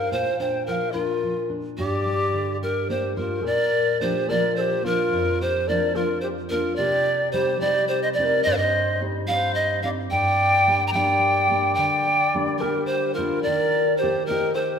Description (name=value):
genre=andean folk, Andean ensemble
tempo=72 BPM (dotted quarters)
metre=6/8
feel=straight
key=unclear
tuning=A4 = 440 Hz
part: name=breathy bright pan flute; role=melody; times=0.0-14.8 s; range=F4 to Bb5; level=-22 LUFS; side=right 1 dB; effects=none
part: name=mellow large quena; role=second line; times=0.0-14.8 s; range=Eb4 to G5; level=-27 LUFS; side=left 3 dB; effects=none
part: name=nylon-string guitar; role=accompaniment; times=0.0-14.8 s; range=F2 to D5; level=-28 LUFS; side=equal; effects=none
room=wet scoring stage reverb, RT60 1.8 s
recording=minimal, uncompressed stereo recording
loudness=-20 LUFS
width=side -7 dB against mid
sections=0.0-3.4 A section; 3.4-14.8 B section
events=nylon-string guitar fill 2.6-3.4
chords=0.1 Bb; 1.8 Gm; 3.4 Bb; 6.8 Cm; 10.1 Gm; 13.5 Eb